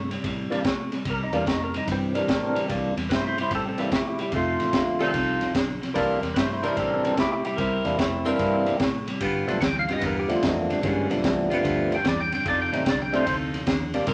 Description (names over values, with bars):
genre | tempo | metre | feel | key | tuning
electric blues shuffle | 148 BPM | 4/4 | swing 67% on 8ths | C mixolydian | A4 = 440 Hz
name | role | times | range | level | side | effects
clean electric guitar | riff | 0.0-14.1 s | F2 to A3 | -33 LUFS | equal | none
vintage muted fingered electric bass | bass | 0.0-14.1 s | F1 to Bb2 | -37 LUFS | equal | none
crunchy breakbeat drum kit | drums | 0.1-14.1 s | kick drum, ride cymbal, snare drum | -30 LUFS | equal | none
percussive tonewheel organ | accompaniment | 0.5-14.1 s | Eb3 to G5 | -28 LUFS | equal | slow rotary speaker, overdrive
clear saxophone section | stabs | 4.3-14.1 s | B3 to C5 | -32 LUFS | equal | none
room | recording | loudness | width
moderate studio reverb, RT60 0.6 s | none | -25 LUFS | mono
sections
0.0-14.1 A section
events
none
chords
0.0 C7; 4.3 F7; 6.0 C7; 9.2 G7; 12.5 F7